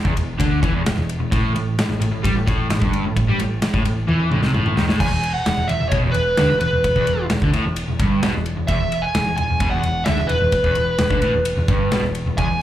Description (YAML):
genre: hard rock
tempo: 130 BPM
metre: 4/4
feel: straight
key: unclear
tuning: A4 = 441 Hz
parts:
  - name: overdriven semi-hollow guitar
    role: riff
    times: 0.0-12.6 s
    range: E2 to G3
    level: -22 LUFS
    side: equal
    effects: slapback echo
  - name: picked electric bass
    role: bass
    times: 0.0-12.6 s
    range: E1 to G2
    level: -23 LUFS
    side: equal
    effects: none
  - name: big rock drum kit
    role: drums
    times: 0.1-12.5 s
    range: crash cymbal, kick drum, ride cymbal, snare drum, toms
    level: -23 LUFS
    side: equal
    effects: none
  - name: smooth overdriven lead guitar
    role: melody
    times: 5.0-12.6 s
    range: B4 to G#5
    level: -21 LUFS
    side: right 1 dB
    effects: analog delay
room: light reverb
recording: live gig heard through the venue's PA, club ambience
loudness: -17 LUFS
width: side -12 dB against mid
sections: 0.0-5.0 A section; 5.0-12.6 B section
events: drum fill 4.1-5.0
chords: 0.0 Dsus2/E; 1.3 A5; 5.0 E5